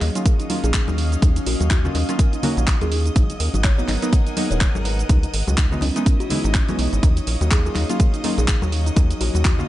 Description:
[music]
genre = deep house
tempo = 124 BPM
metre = 4/4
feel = swing 58% on 16ths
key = Eb minor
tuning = A4 = 440 Hz
[part]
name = warbly tape-like pad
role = sustained chords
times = 0.0-9.7 s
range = Gb3 to Gb5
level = -33 LUFS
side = left 1 dB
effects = chorus, built-in reverb, phaser, sidechain pumping
[part]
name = warbly dusty pluck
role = arpeggios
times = 0.0-9.6 s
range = Eb4 to Eb5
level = -33 LUFS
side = right 4 dB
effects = chorus, sidechain pumping, analog delay
[part]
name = deep mellow chord stab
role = stabs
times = 0.0-9.7 s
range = Fb3 to Gb4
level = -27 LUFS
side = equal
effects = wide subtle chorus, vintage 12-bit sampler grit, sidechain pumping, tape echo
[part]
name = rubbery square bass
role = bass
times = 0.0-9.6 s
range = Eb1 to Eb2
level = -21 LUFS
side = equal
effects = tube saturation, sidechain pumping
[part]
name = house drum kit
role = drums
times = 0.0-9.7 s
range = handclaps, hi-hat, shaker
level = -27 LUFS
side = right 1 dB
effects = none
[part]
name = congas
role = percussion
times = 0.0-9.7 s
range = none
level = -30 LUFS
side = left 3 dB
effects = none
[part]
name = airy breathy pad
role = texture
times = 0.0-9.7 s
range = Gb3 to Gb5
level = -35 LUFS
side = left 3 dB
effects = chorus, sidechain pumping
[part]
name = soft string machine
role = texture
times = 0.0-9.7 s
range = Eb5 to Eb6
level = -37 LUFS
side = equal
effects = ensemble chorus, sidechain pumping
[part]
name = electronic kick drum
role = drums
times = 0.3-9.6 s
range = none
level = -17 LUFS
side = equal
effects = none
[part]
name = kalimba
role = melody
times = 0.6-9.7 s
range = Db4 to Db5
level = -31 LUFS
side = equal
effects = vintage 12-bit sampler grit, analog delay
[sound]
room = little or no reverb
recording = nothing above 10.6 kHz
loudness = -17 LUFS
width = side -15 dB against mid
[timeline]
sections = 0.0-9.7 A section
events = none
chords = 0.0 Ebm9; 3.2 Abm9; 5.1 Dbm9; 7.0 Ebm9

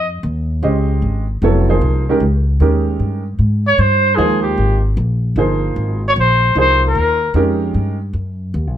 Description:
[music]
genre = modal jazz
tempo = 152 BPM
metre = 3/4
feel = swing 65% on 8ths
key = Ab major from 3.4 s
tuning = A4 = 442 Hz
[part]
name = mellow trumpet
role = melody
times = 0.0-0.1, 3.7-7.4 s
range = G4 to Db5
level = -14 LUFS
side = left 1 dB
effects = none
[part]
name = upright bass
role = bass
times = 0.0-8.8 s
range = F1 to Ab2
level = -16 LUFS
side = equal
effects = none
[part]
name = clear upright piano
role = accompaniment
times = 0.6-8.0 s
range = Eb3 to Eb5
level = -18 LUFS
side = right 3 dB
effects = none
[sound]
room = light reverb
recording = none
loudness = -13 LUFS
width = side -10 dB against mid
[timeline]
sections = 0.0-3.4 A section; 3.4-8.8 B section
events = none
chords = 0.0 Dbmaj9; 3.4 Abmaj9; 8.1 B

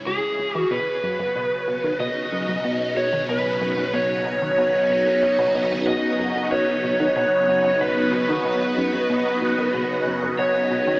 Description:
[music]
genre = ambient, sequencer-driven space music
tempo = 93 BPM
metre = 4/4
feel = straight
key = unclear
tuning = A4 = 439 Hz
[part]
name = phased string machine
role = sustained chords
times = 0.0-11.0 s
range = C#3 to G#4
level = -24 LUFS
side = equal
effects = ensemble chorus, phaser
[part]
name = analog drone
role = bass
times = 0.0-5.8 s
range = B1 to C#2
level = -39 LUFS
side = equal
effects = chorus, tube saturation
[part]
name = lead guitar through a small cranked amp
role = melody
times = 0.1-11.0 s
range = G#4 to D#5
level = -21 LUFS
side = equal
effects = overdrive, tape echo
[part]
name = tight sequenced synth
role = riff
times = 0.1-11.0 s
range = C#2 to E3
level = -29 LUFS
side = equal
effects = chorus, phaser, tape echo
[sound]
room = wet plate reverb, RT60 2.7 s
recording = small speaker sound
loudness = -19 LUFS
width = side -23 dB against mid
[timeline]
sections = 0.0-5.9 A section; 5.9-11.0 B section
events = filter sweep on synth arpeggio sound 0.0-5.9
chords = 0.0 C#m; 0.7 Badd9

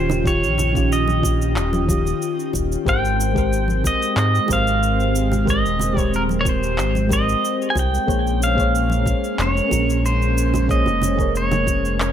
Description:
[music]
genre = sunset chillout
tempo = 92 BPM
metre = 4/4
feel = straight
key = unclear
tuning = A4 = 439 Hz
[part]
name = pedal steel guitar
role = melody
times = 0.0-12.1 s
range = Bb4 to Ab5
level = -23 LUFS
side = right 1 dB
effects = digital delay
[part]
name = mellow FM electric piano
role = accompaniment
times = 0.0-12.1 s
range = Eb3 to Db5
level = -24 LUFS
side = moving between left 8 dB and right 4 dB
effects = chorus, auto-pan, digital delay
[part]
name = airy breathy pad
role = sustained chords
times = 0.0-12.1 s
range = Eb3 to G5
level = -26 LUFS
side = equal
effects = chorus
[part]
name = round analog bass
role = bass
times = 0.0-12.1 s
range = Eb1 to Ab2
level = -21 LUFS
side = equal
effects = none
[part]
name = electronic cabasa and handclaps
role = drums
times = 0.1-12.1 s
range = none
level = -29 LUFS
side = right 1 dB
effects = none
[part]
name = congas and bongos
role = percussion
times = 0.1-11.8 s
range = none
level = -28 LUFS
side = right 2 dB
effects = none
[part]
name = electronic kick drum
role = drums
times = 0.3-11.8 s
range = none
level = -23 LUFS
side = equal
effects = none
[sound]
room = digital ambience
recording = none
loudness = -17 LUFS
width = side -9 dB against mid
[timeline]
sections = 0.0-12.1 A section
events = none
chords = 0.0 Eb9; 2.9 Abmaj9; 8.1 Bbm9

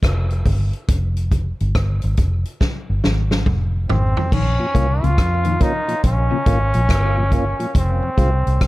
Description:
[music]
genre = dub reggae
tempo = 70 BPM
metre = 4/4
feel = swing 64% on 16ths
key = Bb dorian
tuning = A4 = 440 Hz
[part]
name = vintage muted fingered electric bass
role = bass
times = 0.0-8.7 s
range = F1 to F2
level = -18 LUFS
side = equal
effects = none
[part]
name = vintage drum kit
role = drums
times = 0.0-8.7 s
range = crash cymbal, hi-hat, kick drum, rim click, snare drum, toms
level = -20 LUFS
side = equal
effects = none
[part]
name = brilliant trombone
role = melody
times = 3.9-8.7 s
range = C4 to F4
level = -22 LUFS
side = equal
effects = dub echo
[part]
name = electric guitar at the edge of break-up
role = arpeggios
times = 4.3-6.6 s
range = Bb2 to F3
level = -28 LUFS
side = left 7 dB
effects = none
[part]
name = mellow tonewheel organ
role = accompaniment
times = 4.6-8.3 s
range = F2 to F4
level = -26 LUFS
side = equal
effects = slow rotary speaker, dub echo
[sound]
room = light reverb, studio reverb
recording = none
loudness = -16 LUFS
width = side -18 dB against mid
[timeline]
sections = 0.0-4.3 A section; 4.3-8.7 B section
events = break 0.0-4.3; drum fill 2.6-4.3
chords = 0.0 N.C.; 0.9 Fm; 4.3 Bbm; 7.8 Fm

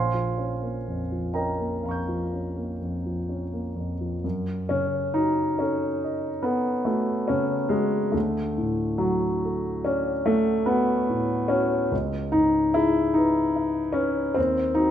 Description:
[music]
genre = classical, impressionist solo piano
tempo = 40-51 BPM (dotted quarters)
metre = 9/8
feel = rubato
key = Bb dorian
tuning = A4 = 441 Hz
[part]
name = dark concert grand piano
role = solo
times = 0.0-14.9 s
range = Bb1 to G6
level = -22 LUFS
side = equal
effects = none
[sound]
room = moderate recital hall reverb, RT60 1.4 s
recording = none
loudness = -23 LUFS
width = side -10 dB against mid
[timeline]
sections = 0.0-4.2 A section; 4.2-14.9 B section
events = none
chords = 0.0 Bbm6; 4.2 F#m6; 8.1 D; 11.9 C#m9; 14.4 D#m

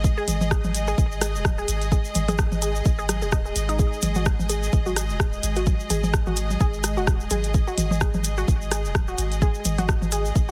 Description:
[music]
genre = minimal techno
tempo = 128 BPM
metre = 4/4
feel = swing 56% on 16ths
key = unclear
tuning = A4 = 440 Hz
[part]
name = punchy sub bass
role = bass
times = 0.0-10.5 s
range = D#1 to G#1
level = -30 LUFS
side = equal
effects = sidechain pumping
[part]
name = electronic kick drum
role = drums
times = 0.0-10.5 s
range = none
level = -24 LUFS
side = equal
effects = none
[part]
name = tube shaker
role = percussion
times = 0.0-10.5 s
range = none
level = -36 LUFS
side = equal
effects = none
[part]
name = clear symphonic string section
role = texture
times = 0.0-10.5 s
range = G#3 to D#6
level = -34 LUFS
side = equal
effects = sidechain pumping
[part]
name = resonant blip pluck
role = riff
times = 0.2-10.5 s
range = D#4 to D#5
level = -33 LUFS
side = equal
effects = chorus, sidechain pumping, delay
[part]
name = minimal click drum kit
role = drums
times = 0.3-10.2 s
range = hi-hat, rim click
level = -31 LUFS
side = equal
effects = none
[part]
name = electronic toms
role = percussion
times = 0.3-10.1 s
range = none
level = -31 LUFS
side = equal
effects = overdrive
[sound]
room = little or no reverb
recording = heavily compressed radio sound, multiband compression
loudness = -23 LUFS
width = mono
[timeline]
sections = 0.0-10.5 A section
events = none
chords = 0.0 G#5

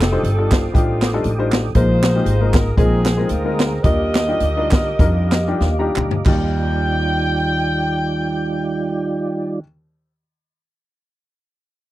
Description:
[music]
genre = uptempo gospel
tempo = 89-119 BPM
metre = 4/4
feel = swing 56% on 8ths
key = Eb major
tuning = A4 = 440 Hz
[part]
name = mellow saxophone section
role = melody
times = 0.0-9.6 s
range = A3 to G5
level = -23 LUFS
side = equal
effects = none
[part]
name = percussive tonewheel organ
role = sustained chords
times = 0.0-9.6 s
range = G3 to Eb6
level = -25 LUFS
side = right 3 dB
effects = chorus vibrato, slow rotary speaker
[part]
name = upright bass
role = bass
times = 0.0-9.6 s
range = F1 to F2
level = -20 LUFS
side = equal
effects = none
[part]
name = swinging big-band drum kit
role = drums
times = 0.0-6.4 s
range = crash cymbal, hi-hat, kick drum, snare drum, toms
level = -18 LUFS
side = equal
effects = none
[part]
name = group handclap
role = percussion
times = 0.0-6.6 s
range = none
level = -28 LUFS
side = right 5 dB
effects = none
[part]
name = warm upright piano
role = accompaniment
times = 0.1-9.6 s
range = Eb2 to Bb5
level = -24 LUFS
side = left 4 dB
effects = none
[sound]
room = little or no reverb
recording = dry, close 1970s-style studio recording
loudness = -15 LUFS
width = side -15 dB against mid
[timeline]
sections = 0.0-6.3 A section; 6.3-11.6 B section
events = slowing down 1.8-6.3; upright piano fill 5.0-6.3; drum fill 5.6-6.3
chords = 0.0 F13; 1.8 Bb7sus4; 2.8 Bb9sus4; 3.8 Ebmaj9

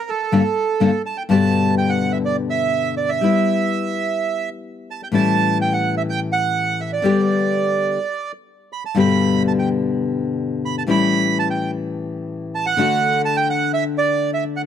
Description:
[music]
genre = tango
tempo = 126 BPM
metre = 4/4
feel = rubato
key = G major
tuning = A4 = 440 Hz
[part]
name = bandoneon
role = melody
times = 0.0-14.6 s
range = A4 to B5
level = -20 LUFS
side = right 6 dB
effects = none
[part]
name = nylon-string guitar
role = accompaniment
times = 0.3-14.7 s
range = G2 to A4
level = -19 LUFS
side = left 4 dB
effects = none
[sound]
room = small room ambience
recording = dry, close 1970s-style studio recording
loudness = -17 LUFS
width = side -9 dB against mid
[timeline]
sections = 0.0-1.3 A section; 1.3-14.7 B section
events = none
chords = 0.0 Gmadd9; 1.3 G; 3.2 Em/G; 5.1 A7; 7.0 G/D; 8.0 N.C.; 9.0 G; 10.9 A7; 12.8 D

